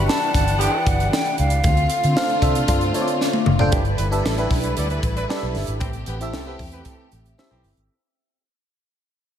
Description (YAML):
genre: polished 1980s jazz-funk pop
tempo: 115 BPM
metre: 4/4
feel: straight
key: G mixolydian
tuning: A4 = 440 Hz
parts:
  - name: breathy mellow silver concert flute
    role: melody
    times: 0.0-2.4 s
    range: F5 to A5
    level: -23 LUFS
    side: left 1 dB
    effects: diffuse ambient delay
  - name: mellow horn section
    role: second line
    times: 0.0-7.7 s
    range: D3 to D5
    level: -31 LUFS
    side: right 2 dB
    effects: none
  - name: FM electric piano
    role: accompaniment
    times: 0.0-7.9 s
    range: C4 to G5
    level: -25 LUFS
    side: equal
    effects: analog chorus
  - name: warm studio string section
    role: sustained chords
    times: 0.0-7.9 s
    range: D3 to F#5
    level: -27 LUFS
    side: equal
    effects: none
  - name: vintage muted fingered electric bass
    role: bass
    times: 0.0-7.9 s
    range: F#1 to D3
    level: -22 LUFS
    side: equal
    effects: none
  - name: crisp fusion drum kit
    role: drums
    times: 0.1-7.9 s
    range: hi-hat, kick drum, snare drum, toms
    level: -23 LUFS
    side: equal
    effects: none
room: moderate lush hall reverb, RT60 1.9 s, small room ambience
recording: dreamy mix soaked in reverb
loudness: -18 LUFS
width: side -9 dB against mid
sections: 0.0-3.7 A section; 3.7-7.9 B section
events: drum fill 3.2-3.7; fade-out 3.7-7.9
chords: 0.0 Em9; 1.6 Dm7; 3.7 G69; 5.8 Am7